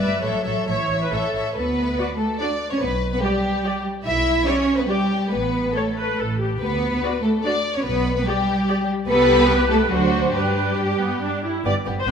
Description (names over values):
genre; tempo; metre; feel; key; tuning
quick classical-period movement for string orchestra; 143 BPM; 3/4; rubato; D major, G major from 9.1 s; A4 = 440 Hz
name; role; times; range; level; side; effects
rich chamber violin section; melody; 0.0-12.1 s; F#4 to E5; -26 LUFS; left 5 dB; none
warm symphonic violin section; second line; 0.0-12.1 s; B3 to E5; -26 LUFS; left 2 dB; none
rich symphonic viola section; accompaniment; 0.0-12.1 s; B3 to D5; -26 LUFS; right 2 dB; none
rich symphonic double bass section; bass; 0.0-12.1 s; G1 to G2; -28 LUFS; right 2 dB; none
warm symphonic cello section; bass; 0.0-12.1 s; G2 to E4; -23 LUFS; right 2 dB; none
room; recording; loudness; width
moderate recital hall reverb, RT60 1.7 s; none; -19 LUFS; side -7 dB against mid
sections
0.0-1.6 A section; 1.6-11.7 B section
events
none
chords
0.2 A; 1.6 D; 2.8 G/B; 4.1 Em7/B; 5.3 Asus2; 6.2 Gsus2/A; 6.6 D; 7.9 G/B; 9.1 Am7/C; 9.9 D7; 10.3 G